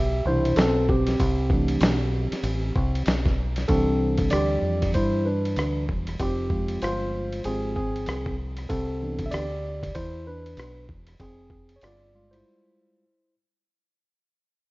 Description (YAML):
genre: hip hop, jazz-hop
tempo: 96 BPM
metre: 4/4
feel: swing 60% on 16ths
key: C major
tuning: A4 = 439 Hz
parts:
  - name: tine electric piano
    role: accompaniment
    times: 0.0-13.3 s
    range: B2 to E5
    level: -26 LUFS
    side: equal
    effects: none
  - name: deep dub fingered electric bass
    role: bass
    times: 0.0-12.4 s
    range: E1 to G2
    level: -27 LUFS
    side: equal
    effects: none
  - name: dusty soul sampler-style drum kit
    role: drums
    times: 0.5-12.4 s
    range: hi-hat, kick drum, ride cymbal, rim click, snare drum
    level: -27 LUFS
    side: equal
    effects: none
room: light reverb, digital ambience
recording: rough home demo mix, vinyl crackle, nothing above 7.5 kHz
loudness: -22 LUFS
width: side -21 dB against mid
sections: 0.0-3.7 A section; 3.7-13.7 B section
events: tine electric piano solo 0.0-3.7, 3.7-13.7; fade-out 3.7-13.7; break 12.4-13.7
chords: 0.0 Cmaj9; 1.2 C6; 3.7 Cmaj9; 6.2 Fmadd9; 8.7 Cmaj9; 11.2 Fmadd9